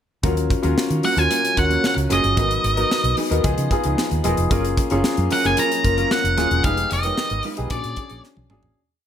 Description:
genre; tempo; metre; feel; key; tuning
polished 1980s jazz-funk pop; 112 BPM; 4/4; straight; Eb minor; A4 = 438 Hz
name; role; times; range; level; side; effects
warm grand piano; accompaniment; 0.2-8.8 s; Bb3 to Bb4; -23 LUFS; left 2 dB; wide subtle chorus
mellow electric guitar; riff; 0.2-8.7 s; F3 to D5; -29 LUFS; right 3 dB; analog chorus
vintage muted fingered electric bass; bass; 0.2-8.7 s; Eb1 to Eb3; -23 LUFS; equal; none
modern studio drum kit; drums; 0.2-8.8 s; hi-hat, kick drum, snare drum, toms; -25 LUFS; equal; none
octave-fuzz lead guitar; melody; 1.1-8.2 s; D5 to Bb5; -22 LUFS; right 1 dB; distortion
room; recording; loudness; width
small room reverb; none; -17 LUFS; side -9 dB against mid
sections
0.2-8.8 verse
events
fade-out 6.6-8.8; drum fill 8.2-8.8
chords
0.2 Ebm7; 2.4 Abm7; 3.4 Db9; 4.5 Gbmaj7; 6.6 Fm7b5; 7.7 Bb7alt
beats
| 0.24 0.77 1.31 1.84 | 2.37 2.90 3.44 3.97 | 4.50 5.04 5.57 6.10 | 6.64 7.17 7.70 8.24

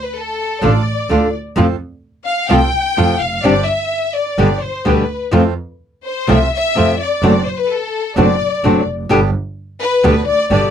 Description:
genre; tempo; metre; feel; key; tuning
tango; 128 BPM; 4/4; rubato; unclear; A4 = 440 Hz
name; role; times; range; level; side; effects
rich studio violin section; second line; 0.0-10.7 s; A4 to G5; -18 LUFS; left 4 dB; none
flamenco guitar; accompaniment; 0.6-10.7 s; B2 to G4; -14 LUFS; left 2 dB; none
bandoneon; stabs; 0.6-10.7 s; A3 to A4; -22 LUFS; right 12 dB; none
clear double bass; bass; 0.6-10.7 s; F1 to F2; -18 LUFS; right 2 dB; none
room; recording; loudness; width
little or no reverb; dry, close 1970s-style studio recording; -13 LUFS; side -8 dB against mid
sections
0.0-10.7 A section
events
violin section solo 0.0-10.7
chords
0.0 Dm; 1.6 F; 3.4 Gsus4; 4.4 G; 5.3 F; 7.2 D7/F#; 9.1 G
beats
0.16 0.63 1.09 | 1.56 2.03 2.50 2.97 | 3.44 3.91 4.38 4.86 | 5.33 5.81 6.28 6.75 | 7.23 7.70 8.17 8.63 | 9.10 9.57 10.04 10.51

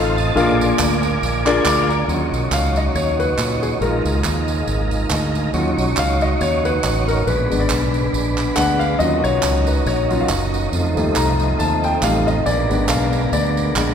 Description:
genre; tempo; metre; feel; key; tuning
uptempo gospel; 139 BPM; 4/4; swing 55% on 8ths; Eb minor; A4 = 440 Hz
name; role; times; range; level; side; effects
warm grand piano; accompaniment; 0.0-13.9 s; Bb2 to D6; -20 LUFS; left 3 dB; none
tonewheel organ; sustained chords; 0.0-13.9 s; F3 to A5; -24 LUFS; right 2 dB; chorus vibrato, fast rotary speaker
fingered electric bass; bass; 0.0-13.9 s; Gb1 to Bb2; -21 LUFS; right 1 dB; none
tambourine and handclaps; percussion; 0.2-13.9 s; none; -26 LUFS; right 5 dB; none
warm French horn section; sustained chords; 2.1-13.9 s; F3 to Bb4; -27 LUFS; equal; none
room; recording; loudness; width
wet church reverb, RT60 3.8 s; recorded in a church or concert hall; -16 LUFS; side -8 dB against mid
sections
0.0-2.1 A section; 2.1-13.9 B section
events
tonewheel organ fill 1.2-2.1; grand piano solo 2.1-13.9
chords
0.4 Bb7; 2.1 Ebm7; 3.8 Bb7sus4; 5.5 Ebm7; 7.3 Bb7b9; 9.0 Ebm7; 10.7 F7; 12.5 Bb7b9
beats
| 0.37 0.80 1.23 1.66 | 2.09 2.52 2.95 3.38 | 3.81 4.25 4.68 5.11 | 5.54 5.97 6.41 6.84 | 7.27 7.70 8.13 8.57 | 9.00 9.43 9.86 10.30 | 10.73 11.16 11.59 12.03 | 12.46 12.89 13.32 13.76

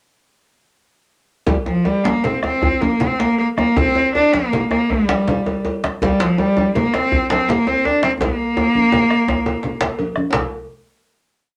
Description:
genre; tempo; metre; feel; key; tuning
west african traditional, West African drum ensemble; 104-118 BPM (dotted quarters); 12/8; straight; Bb major pentatonic; A4 = 444 Hz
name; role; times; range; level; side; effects
bright cello; melody; 1.5-9.9 s; F3 to D4; -19 LUFS; equal; none
bombo; percussion; 1.5-10.5 s; none; -30 LUFS; equal; none
congas; percussion; 1.5-10.5 s; none; -27 LUFS; equal; none
cowbell; percussion; 1.5-10.5 s; none; -31 LUFS; equal; none
djembe; percussion; 1.5-10.5 s; none; -32 LUFS; equal; none
djembe; percussion; 1.5-10.5 s; none; -26 LUFS; equal; none
room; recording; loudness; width
wet small room reverb, RT60 0.5 s; none; -18 LUFS; mono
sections
1.5-10.3 A section; 10.3-11.6 final hit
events
speeding up 1.5-11.6; drum fill 8.2-10.3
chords
none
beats
| 1.47 2.04 2.62 3.19 | 3.77 4.33 4.90 5.46 | 6.02 6.58 7.13 7.67 | 8.21 8.75 9.29 9.81 | 10.34

